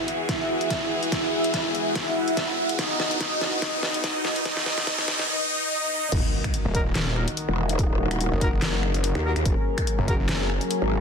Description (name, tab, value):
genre	heavy wobble dubstep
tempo	144 BPM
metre	4/4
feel	swing 55% on 16ths, half-time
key	Eb phrygian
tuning	A4 = 439 Hz
part	soft supersaw	melody	0.0-6.1 s	D#4 to E5	-28 LUFS	right 2 dB	low-pass filter, tape echo
part	warm studio string section	sustained chords	0.0-11.0 s	E2 to Bb4	-33 LUFS	left 2 dB	sidechain pumping, low-pass filter
part	riser and impact	sound effects	0.0-7.8 s	none	-30 LUFS	equal	none
part	deep dark ambient pad	texture	0.1-11.0 s	D#4 to Ab5	-32 LUFS	left 2 dB	chorus, built-in reverb, sidechain pumping
part	dubstep drum kit	drums	0.1-10.8 s	crash cymbal, finger snaps, handclaps, hi-hat, snare drum	-29 LUFS	left 1 dB	none
part	electronic kick drum	drums	0.3-10.2 s	none	-27 LUFS	equal	none
part	growl bass	bass	6.1-11.0 s	Eb1 to Eb2	-24 LUFS	equal	chorus, overdrive
part	mellow brass ensemble	stabs	6.7-10.1 s	Eb4 to Bb4	-33 LUFS	left 1 dB	tape echo
part	snarling distorted saw bass	bass	6.7-10.6 s	Eb1 to Gb1	-26 LUFS	equal	overdrive
room	light reverb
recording	dense, heavily limited modern master, high-pass filter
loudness	-22 LUFS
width	side -6 dB against mid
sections	0.0-6.1 A section; 6.1-11.0 B section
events	build-up 0.0-6.1; drum fill 0.0-5.3; riser 0.0-6.1; filter sweep on supersaw synth 0.0-6.1; filter sweep 0.0-6.1; drop 6.1-11.0; impact 6.1-7.8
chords	0.0 Eadd9; 2.8 B; 6.1 Ebm; 9.5 Gbadd9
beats	0.29 0.70 | 1.12 1.54 1.96 2.37 | 2.79 3.21 3.62 4.04 | 4.46 4.87 5.29 5.71 | 6.12 6.54 6.96 7.37 | 7.79 8.21 8.62 9.04 | 9.46 9.87 10.29 10.71